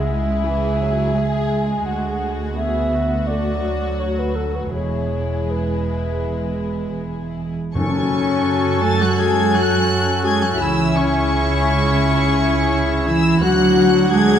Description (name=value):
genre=cinematic, emotional film score for orchestra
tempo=84 BPM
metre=4/4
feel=rubato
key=F# minor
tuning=A4 = 440 Hz
part: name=rich studio violin section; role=melody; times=0.0-14.4 s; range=F#4 to A6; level=-26 LUFS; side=left 3 dB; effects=none
part: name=baroque flute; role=second line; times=0.0-14.4 s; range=A4 to G#5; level=-27 LUFS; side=left 2 dB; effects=none
part: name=warm studio violin section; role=second line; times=0.0-14.4 s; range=E4 to G#5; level=-27 LUFS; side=left 2 dB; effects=none
part: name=dark studio viola section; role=accompaniment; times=0.0-14.4 s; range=E3 to F#4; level=-25 LUFS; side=left 1 dB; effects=none
part: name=dark studio double bass section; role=bass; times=0.0-14.4 s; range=E1 to F#2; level=-24 LUFS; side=right 3 dB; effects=none
part: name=warm studio cello section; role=bass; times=0.0-14.4 s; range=C#2 to A3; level=-23 LUFS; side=right 3 dB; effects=none
part: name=clear clarinet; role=second line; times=7.8-14.4 s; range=D4 to A4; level=-28 LUFS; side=equal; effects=none
part: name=mellow cor anglais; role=second line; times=7.8-14.4 s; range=C#4 to A4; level=-27 LUFS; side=right 2 dB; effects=none
part: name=mellow French horn section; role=sustained chords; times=7.8-14.4 s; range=C#4 to A4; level=-22 LUFS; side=left 6 dB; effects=none
part: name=timpani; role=percussion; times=7.8-8.8 s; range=F#2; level=-26 LUFS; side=left 1 dB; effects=none
room=moderate scoring stage reverb, RT60 1.6 s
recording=dark, warm production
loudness=-16 LUFS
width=side -9 dB against mid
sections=0.0-7.8 A section; 7.8-14.4 A section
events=none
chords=0.0 C#m; 1.9 D; 4.8 E; 7.8 F#madd9; 10.6 C#m; 13.4 D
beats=0.45 1.16 | 1.86 2.57 3.29 4.01 | 4.75 5.51 6.27 7.02 | 7.76 8.47 9.19 9.89 | 10.60 11.31 12.01 12.72 | 13.42 14.12